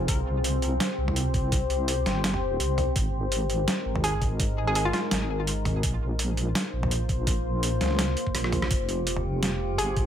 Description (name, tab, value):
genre	half-time drum and bass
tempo	167 BPM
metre	4/4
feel	swing 55% on 16ths, half-time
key	F minor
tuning	A4 = 440 Hz
part	deep dark ambient pad	sustained chords	0.0-10.1 s	Ab3 to C5	-30 LUFS	left 2 dB	chorus, built-in reverb, vintage 12-bit sampler grit, sidechain pumping
part	deep soft wobble bass	bass	0.0-10.1 s	F1 to Db2	-28 LUFS	equal	chorus
part	boom bap sampler-style drum kit	drums	0.1-10.0 s	hi-hat, rim click, snare drum, toms	-29 LUFS	right 1 dB	overdrive
part	electronic kick drum	drums	0.1-10.0 s	none	-27 LUFS	equal	none
part	hollow square pluck	melody	4.0-5.0, 9.8-10.0 s	F4 to Ab4	-31 LUFS	equal	chorus, ping-pong delay
part	metallic inharmonic drone	texture	8.9-10.1 s	G4	-34 LUFS	right 2 dB	chorus, built-in reverb
room	light reverb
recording	none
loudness	-24 LUFS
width	side -9 dB against mid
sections	0.0-8.7 A section; 8.7-10.1 A section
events	drop 0.0-8.7, 8.7-10.1; drum fill 8.3-8.7; band accent 8.6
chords	0.1 C5; 3.0 Ab5; 5.8 Bbm; 8.7 Fm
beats	| 0.08 0.44 0.80 1.16 | 1.52 1.88 2.24 2.60 | 2.96 3.32 3.68 4.04 | 4.39 4.75 5.11 5.47 | 5.83 6.19 6.55 6.91 | 7.27 7.63 7.99 8.35 | 8.71 9.06 9.42 9.78